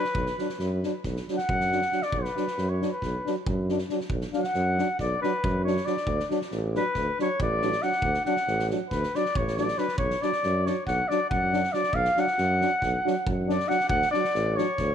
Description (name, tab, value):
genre	balkan folk, Balkan brass band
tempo	276 BPM (eighths)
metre	9/8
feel	straight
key	B minor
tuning	A4 = 440 Hz
part	mellow cornet	melody	0.0-14.9 s	B4 to F#5	-27 LUFS	left 1 dB	tape echo
part	mellow euphonium	accompaniment	0.0-14.7 s	F#3	-34 LUFS	right 11 dB	none
part	mellow trombone	accompaniment	0.0-14.7 s	D4	-33 LUFS	left 12 dB	none
part	loose indie drum kit	percussion	0.0-14.9 s	kick drum, snare drum	-35 LUFS	right 1 dB	none
part	warm tuba	bass	0.1-14.9 s	A1 to F#2	-29 LUFS	right 1 dB	none
room	light reverb, studio reverb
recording	1960s-style stereo with parts hard left and right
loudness	-24 LUFS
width	side -8 dB against mid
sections	0.0-14.9 A section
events	cornet solo 0.0-14.9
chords	0.2 Bm; 6.1 D; 10.0 Bm; 13.9 D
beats	| 0.16 0.38 0.59 0.81 1.03 1.25 1.47 1.69 1.91 | 2.13 2.35 2.57 2.79 3.00 3.22 3.44 3.66 3.88 | 4.10 4.32 4.54 4.75 4.97 5.19 5.41 5.63 5.85 | 6.07 6.28 6.50 6.72 6.94 7.16 7.37 7.59 7.81 | 8.03 8.24 8.46 8.68 8.90 9.11 9.33 9.55 9.77 | 9.98 10.20 10.42 10.64 10.85 11.07 11.29 11.51 11.72 | 11.94 12.16 12.37 12.59 12.81 13.03 13.24 13.46 13.68 | 13.89 14.11 14.33 14.55 14.77